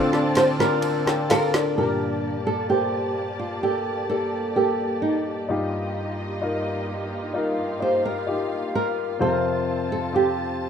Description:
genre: pop ballad.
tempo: 64 BPM.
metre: 4/4.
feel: straight.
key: G minor.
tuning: A4 = 440 Hz.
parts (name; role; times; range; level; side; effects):
flamenco guitar; melody; 0.0-10.7 s; Eb4 to D5; -24 LUFS; right 1 dB; none.
warm grand piano; accompaniment; 0.0-10.7 s; D2 to G5; -26 LUFS; left 3 dB; none.
rich studio string section; sustained chords; 0.0-10.7 s; G2 to A5; -30 LUFS; right 1 dB; none.
fingerpicked plugged-in steel-string acoustic guitar; arpeggios; 0.0-2.4 s; D3 to A4; -28 LUFS; right 5 dB; none.
smooth R&B drum kit; drums; 0.1-1.8 s; ride cymbal, snare drum; -26 LUFS; right 1 dB; none.
room: light reverb.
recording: rough home demo mix.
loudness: -21 LUFS.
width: side -7 dB against mid.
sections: 0.0-1.8 A section; 1.8-10.7 B section.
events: drum fill 0.0-1.8.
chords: 0.0 Dm7; 1.8 Gmadd9; 5.5 Ebadd9/G; 9.2 F.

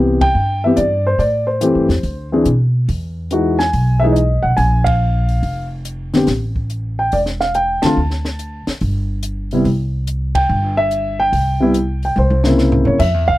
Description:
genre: jazz piano trio.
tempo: 142 BPM.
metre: 4/4.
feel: swing 68% on 8ths.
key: C major.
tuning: A4 = 442 Hz.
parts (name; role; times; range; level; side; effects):
dark concert grand piano; melody; 0.0-13.4 s; C3 to A5; -16 LUFS; equal; none.
upright bass; bass; 0.0-13.4 s; E1 to B2; -18 LUFS; equal; none.
compact cocktail drum kit; drums; 0.2-13.1 s; crash cymbal, hi-hat, kick drum, ride cymbal, snare drum, toms; -23 LUFS; equal; none.
room: little or no reverb.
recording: dry, close 1970s-style studio recording.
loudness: -14 LUFS.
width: side -16 dB against mid.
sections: 0.0-13.0 A section.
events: band accent 0.1, 4.8, 7.8, 10.3; drum fill 12.2-13.0.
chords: 0.0 Cmaj7; 1.2 Am7; 2.0 N.C.; 2.9 Emaj9; 4.6 Bb5; 6.3 A5; 8.0 D5; 8.8 C5; 12.2 C7b9.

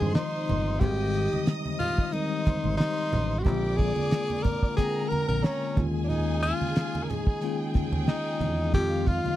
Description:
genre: lush 1970s-style soul.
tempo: 91 BPM.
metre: 4/4.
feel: swing 54% on 16ths.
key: Ab major.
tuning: A4 = 439 Hz.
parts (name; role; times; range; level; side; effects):
breathy tenor saxophone; melody; 0.0-9.4 s; Db4 to Bb4; -29 LUFS; left 2 dB; none.
warm studio violin section; second line; 0.0-9.4 s; F4 to Eb6; -38 LUFS; right 2 dB; none.
mellow tine electric piano; accompaniment; 0.0-9.4 s; Db3 to G5; -32 LUFS; left 3 dB; medium stereo tremolo.
mellow French horn section; sustained chords; 0.0-9.4 s; Bb2 to G4; -40 LUFS; equal; stereo widening.
fingered electric bass; bass; 0.0-9.3 s; G1 to G2; -29 LUFS; right 1 dB; none.
congas; percussion; 0.0-9.4 s; none; -34 LUFS; right 4 dB; none.
cloth-damped thuddy drum kit; drums; 0.1-9.2 s; hi-hat, kick drum, snare drum; -23 LUFS; right 1 dB; none.
room: little or no reverb.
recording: dry, close 1970s-style studio recording.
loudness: -24 LUFS.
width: side -14 dB against mid.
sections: 0.0-9.4 A section.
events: none.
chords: 0.0 Fm7; 0.8 Abmaj7; 3.5 Bb9; 5.8 Eb9sus4; 8.7 Fm7.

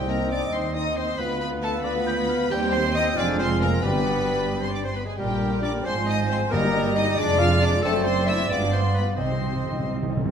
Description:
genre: quick classical-period movement for symphony orchestra.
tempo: 90 BPM (dotted quarters).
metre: 6/8.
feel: straight.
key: C minor.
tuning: A4 = 440 Hz.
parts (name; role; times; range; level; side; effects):
warm chamber violin section; melody; 0.0-9.9 s; G5 to F6; -31 LUFS; equal; none.
mellow hollow concert flute; second line; 0.0-10.3 s; D5 to Ab5; -32 LUFS; left 1 dB; none.
warm chamber violin section; second line; 0.0-9.8 s; G4 to F5; -32 LUFS; left 3 dB; none.
warm oboe; second line; 0.0-10.2 s; Bb4 to G5; -34 LUFS; right 1 dB; none.
dark chamber viola section; accompaniment; 0.0-10.3 s; D3 to G4; -32 LUFS; right 1 dB; none.
mellow bassoon; accompaniment; 0.0-10.3 s; F3 to C4; -32 LUFS; right 2 dB; none.
mellow French horn section; sustained chords; 0.0-9.9 s; G3 to F4; -29 LUFS; left 3 dB; none.
dark chamber cello section; bass; 0.0-10.3 s; C2 to C3; -29 LUFS; right 2 dB; none.
dark studio double bass section; bass; 0.0-10.3 s; F1 to Eb2; -29 LUFS; right 3 dB; none.
timpani; percussion; 0.0-0.5, 3.8-4.5, 6.5-7.1, 9.2-10.3 s; G2 to C3; -30 LUFS; left 1 dB; none.
bright clarinet; second line; 0.1-9.8 s; G4 to F5; -31 LUFS; left 1 dB; none.
room: wet recital hall reverb, RT60 1.3 s.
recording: none.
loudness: -21 LUFS.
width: side -7 dB against mid.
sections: 0.0-10.3 A section.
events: timpani fill 9.2-10.3.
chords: 0.0 Cm; 1.2 Bdim/D; 2.5 Cm/Eb; 3.2 Fm; 3.8 G; 5.2 Gm/Bb; 5.9 Fm/Ab; 6.5 Eb/G; 7.2 Ddim/F; 7.8 D7/F#; 8.5 G7b9; 9.2 Cm.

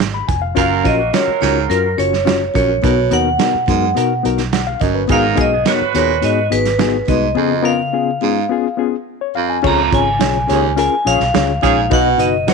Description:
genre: uptempo 1960s-style soul.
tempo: 106 BPM.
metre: 4/4.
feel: straight.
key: unclear.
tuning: A4 = 441 Hz.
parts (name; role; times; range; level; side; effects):
vintage muted fingered electric bass; bass; 0.0-12.5 s; E#1 to B2; -21 LUFS; right 1 dB; none.
crunchy breakbeat drum kit; drums; 0.0-12.5 s; crash cymbal, hi-hat, kick drum, snare drum; -20 LUFS; right 6 dB; none.
reed electric piano; accompaniment; 0.1-12.5 s; G#2 to B5; -18 LUFS; left 14 dB; overdrive, fast tremolo.
vibraphone with hard mallets; melody; 0.6-12.5 s; A#4 to A#5; -18 LUFS; right 1 dB; none.
clear horn section; second line; 0.6-6.5, 10.5-11.8 s; C#3 to B4; -21 LUFS; right 14 dB; none.
clear baritone saxophone; riff; 0.6-12.3 s; D#2 to B2; -21 LUFS; right 14 dB; none.
room: light reverb, studio ambience.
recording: 1960s-style stereo with parts hard left and right.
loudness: -13 LUFS.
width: side -4 dB against mid.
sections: 0.0-9.6 A section; 9.6-12.5 B section.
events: break 7.4-9.6.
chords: 0.0 C#7 (rootless); 0.6 F#maj7; 2.8 Bmaj7; 5.1 G#m7; 7.4 C#7; 9.6 C#; 11.9 B.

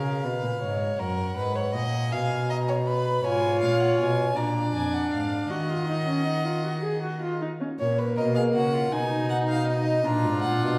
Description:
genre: classical, baroque-style fugue for string quartet.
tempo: 53 BPM (dotted quarters).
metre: 6/8.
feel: straight.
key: Eb minor from 3.2 s.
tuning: A4 = 444 Hz.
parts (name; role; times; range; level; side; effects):
warm violin; melody; 0.0-10.8 s; Eb5 to B5; -34 LUFS; equal; none.
warm violin; second line; 0.0-10.8 s; Eb4 to E#5; -32 LUFS; equal; none.
warm cello; bass; 0.0-10.8 s; F2 to Eb3; -30 LUFS; equal; none.
warm viola; accompaniment; 3.2-10.8 s; Bb3 to Ab4; -30 LUFS; equal; none.
room: wet recital hall reverb, RT60 1.7 s.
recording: heard from further back in the room.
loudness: -26 LUFS.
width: mono.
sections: 0.0-7.8 A section; 7.8-10.8 B section.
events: none.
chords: 0.0 C#; 1.0 F#; 2.1 N.C.; 3.2 Fdim/Ab; 4.4 Bb7; 5.5 Ebm; 7.8 Ebm/Bb (rootless); 8.9 Abm/Cb; 10.1 Bb7.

